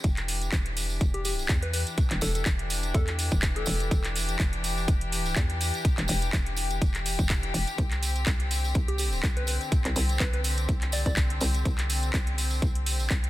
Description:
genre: bass house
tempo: 124 BPM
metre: 4/4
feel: swing 54% on 16ths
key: E minor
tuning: A4 = 440 Hz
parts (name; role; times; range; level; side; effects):
- rich chamber string section; sustained chords; 0.0-13.3 s; D3 to G4; -35 LUFS; left 3 dB; sidechain pumping, low-pass filter
- hollow knocking FM bass; bass; 0.0-13.3 s; E1 to E2; -29 LUFS; equal; sidechain pumping
- electronic kick drum; drums; 0.0-13.2 s; none; -26 LUFS; equal; none
- house drum kit; drums; 0.0-13.3 s; handclaps, hi-hat; -32 LUFS; equal; overdrive
- tambourine; percussion; 0.0-13.2 s; none; -36 LUFS; right 3 dB; none
- soft struck synth lead; melody; 1.1-4.0, 8.9-11.1 s; G4 to D5; -37 LUFS; left 1 dB; chorus, digital delay
room: little or no reverb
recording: dense, heavily limited modern master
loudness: -24 LUFS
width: side -16 dB against mid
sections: 0.0-13.3 A section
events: none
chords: 0.0 Em7; 7.8 Csus2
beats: | 0.04 0.53 1.01 1.49 | 1.98 2.46 2.94 3.43 | 3.91 4.40 4.88 5.36 | 5.85 6.33 6.82 7.30 | 7.78 8.27 8.75 9.23 | 9.72 10.20 10.69 11.17 | 11.65 12.14 12.62 13.11

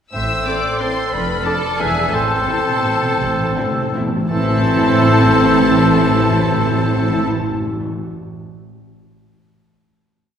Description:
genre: classical, orchestral ballroom waltz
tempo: 153-197 BPM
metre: 3/4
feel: rubato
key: A minor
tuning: A4 = 440 Hz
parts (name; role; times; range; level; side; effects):
- warm studio violin section; melody; 0.1-7.2 s; G#5 to E6; -24 LUFS; left 3 dB; none
- bright clarinet; second line; 0.1-7.2 s; A4 to B4; -25 LUFS; left 4 dB; none
- clear oboe; second line; 0.1-7.2 s; A4 to E5; -24 LUFS; right 2 dB; none
- hollow large flute ensemble; second line; 0.1-7.2 s; E6 to F6; -25 LUFS; equal; none
- warm studio violin section; second line; 0.1-7.2 s; G#4 to E5; -27 LUFS; left 2 dB; none
- warm bassoon; accompaniment; 0.1-7.2 s; E3 to D4; -26 LUFS; equal; none
- dark studio cello section; bass; 0.1-7.2 s; E2 to E3; -25 LUFS; right 2 dB; none
- warm studio double bass section; bass; 0.1-7.2 s; E1 to A1; -24 LUFS; equal; none
- timpani; percussion; 0.1-7.9 s; A2; -22 LUFS; left 1 dB; none
- warm studio viola section; accompaniment; 0.5-7.2 s; C4 to A4; -22 LUFS; right 2 dB; none
- mellow French horn section; sustained chords; 0.5-7.2 s; E3 to D4; -24 LUFS; equal; none
room: wet concert hall reverb, RT60 1.8 s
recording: recorded in a church or concert hall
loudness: -14 LUFS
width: side -8 dB against mid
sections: 0.1-4.3 A section; 4.3-6.5 final chord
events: slowing down 1.6-4.3; timpani fill 2.1-4.3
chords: 0.1 Am; 1.1 Dm/F; 1.8 E7; 2.1 Am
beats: | 0.14 0.47 0.82 | 1.14 1.46 1.80 | 2.13 2.48 2.84 | 3.19 3.55 3.94 | 4.30 4.67 5.05 | 5.40 5.75 6.12

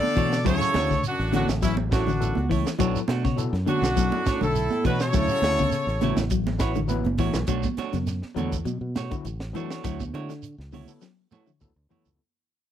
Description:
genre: afrobeat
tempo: 102 BPM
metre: 4/4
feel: swing 54% on 16ths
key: unclear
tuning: A4 = 440 Hz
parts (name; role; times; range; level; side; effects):
- bright horn section; melody; 0.0-6.1 s; E4 to D5; -26 LUFS; equal; none
- clear trumpet; second line; 0.0-6.1 s; C#4 to A4; -36 LUFS; right 2 dB; none
- growling baritone saxophone; second line; 0.0-6.1 s; E2 to D3; -34 LUFS; left 7 dB; none
- tight funk drum kit; drums; 0.0-12.2 s; hi-hat, kick drum, snare drum, toms; -29 LUFS; equal; none
- congas; percussion; 0.0-12.1 s; none; -31 LUFS; right 7 dB; none
- clean electric guitar; arpeggios; 0.2-12.1 s; C#3 to F#3; -29 LUFS; left 9 dB; none
- semi-hollow electric guitar; stabs; 0.2-12.1 s; A3 to C#5; -32 LUFS; right 9 dB; slapback echo
- fingered electric bass; bass; 0.2-12.2 s; F#1 to D3; -28 LUFS; equal; none
- shekere; percussion; 0.2-12.2 s; none; -35 LUFS; right 6 dB; none
- overdriven tine electric piano; accompaniment; 1.3-12.2 s; F#3 to B4; -35 LUFS; left 8 dB; fast tremolo
room: little or no reverb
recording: dry, close 1970s-style studio recording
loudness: -22 LUFS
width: side -10 dB against mid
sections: 0.0-7.5 A section; 7.5-12.2 B section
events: drum fill 6.9-7.5, 11.0-12.2; fade-out 7.5-12.2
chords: 0.5 Dmaj9; 2.8 Bm9; 5.1 Dmaj9; 7.5 Bm9; 9.8 Dmaj9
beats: | 0.46 1.04 1.62 2.21 | 2.79 3.38 3.97 4.55 | 5.14 5.72 6.31 6.90 | 7.49 8.07 8.66 9.25 | 9.84 10.43 11.02 11.60

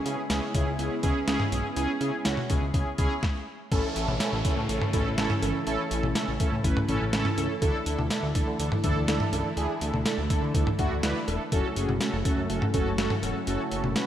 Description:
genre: synth-pop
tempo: 123 BPM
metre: 4/4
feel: straight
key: unclear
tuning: A4 = 440 Hz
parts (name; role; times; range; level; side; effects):
- string machine, violas; sustained chords; 0.0-14.1 s; C#3 to E4; -34 LUFS; equal; ensemble chorus
- mellow synth brass; accompaniment; 0.1-14.1 s; C#4 to B4; -30 LUFS; right 1 dB; chorus, phaser
- fat analog bass; bass; 0.1-13.9 s; E1 to D3; -31 LUFS; equal; none
- boom bap sampler-style drum kit; drums; 0.1-14.1 s; cowbell, hi-hat, kick drum, snare drum, toms; -28 LUFS; equal; none
- downlifter; sound effects; 3.7-7.6 s; none; -38 LUFS; equal; none
room: moderate lush hall reverb, RT60 1.8 s, digital ambience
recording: bright 1980s-style digital production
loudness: -24 LUFS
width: side -11 dB against mid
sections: 0.0-3.7 A section; 3.7-14.1 B section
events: stop 3.2-3.7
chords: 0.0 C#m7; 3.7 A; 7.6 Dsus2; 11.5 F#m7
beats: 0.30 0.79 1.28 | 1.76 2.25 2.74 3.23 | 3.72 4.20 4.69 5.18 | 5.67 6.16 6.64 7.13 | 7.62 8.11 8.59 9.08 | 9.57 10.06 10.54 11.03 | 11.52 12.01 12.50 12.98 | 13.47 13.96

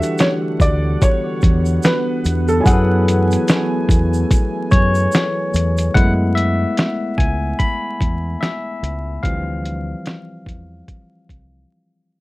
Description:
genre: lo-fi hip hop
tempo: 73 BPM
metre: 4/4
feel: swing 57% on 16ths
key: unclear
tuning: A4 = 441 Hz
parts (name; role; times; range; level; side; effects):
- warm upright piano; melody; 0.0-5.1 s; A4 to G#5; -22 LUFS; right 1 dB; none
- barky tine electric piano; accompaniment; 0.0-12.2 s; E3 to B5; -21 LUFS; left 2 dB; medium stereo tremolo, cassette tape, low-pass filter
- warbly tape-like pad; sustained chords; 0.0-5.9 s; D3 to G#5; -25 LUFS; right 1 dB; chorus, built-in reverb
- lo-fi sampler-style drum kit; drums; 0.0-11.5 s; hi-hat, kick drum, snare drum; -16 LUFS; equal; none
- tube shaker; percussion; 0.0-5.9 s; none; -37 LUFS; right 4 dB; none
- deep dub fingered electric bass; bass; 0.6-11.6 s; C2 to F#2; -19 LUFS; equal; none
room: light reverb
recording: vinyl crackle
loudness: -15 LUFS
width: side -19 dB against mid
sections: 0.0-5.9 A section; 5.9-12.2 B section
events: fade-out 5.9-12.2; tine electric piano solo 5.9-12.2; filter sweep on tine electric piano 5.9-12.2; break 11.7-12.2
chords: 0.0 Em11; 2.7 F#m11; 9.2 Dm11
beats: 0.19 1.01 1.83 | 2.66 3.48 4.30 5.12 | 5.95 6.77 7.59 8.41 | 9.23 10.05 10.88 11.70

